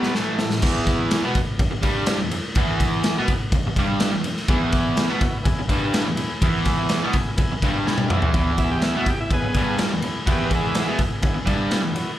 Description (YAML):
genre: garage rock duo or trio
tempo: 125 BPM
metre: 4/4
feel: straight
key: unclear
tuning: A4 = 442 Hz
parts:
  - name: overdriven combo organ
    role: melody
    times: 0.0-0.1, 8.6-11.0 s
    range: G3 to G#4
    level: -26 LUFS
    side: equal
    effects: none
  - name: overdriven combo organ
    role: sustained chords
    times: 0.0-0.6, 4.5-12.1 s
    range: A3 to G#5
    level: -32 LUFS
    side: left 1 dB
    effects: none
  - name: fuzz guitar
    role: riff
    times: 0.0-12.0 s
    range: E2 to B3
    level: -23 LUFS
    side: equal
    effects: distortion, slapback echo
  - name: raw garage drum kit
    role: drums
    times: 0.0-12.1 s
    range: crash cymbal, kick drum, ride cymbal, snare drum, toms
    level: -22 LUFS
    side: equal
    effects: none
room: studio reverb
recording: live gig heard through the venue's PA, club reverb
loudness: -19 LUFS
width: side -13 dB against mid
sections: 0.6-8.3 A section; 8.3-12.2 B section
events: drum fill 0.0-0.6, 7.9-8.3; transistor combo organ fill 7.6-8.3; transistor combo organ solo 8.3-12.2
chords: 0.2 A5; 0.6 E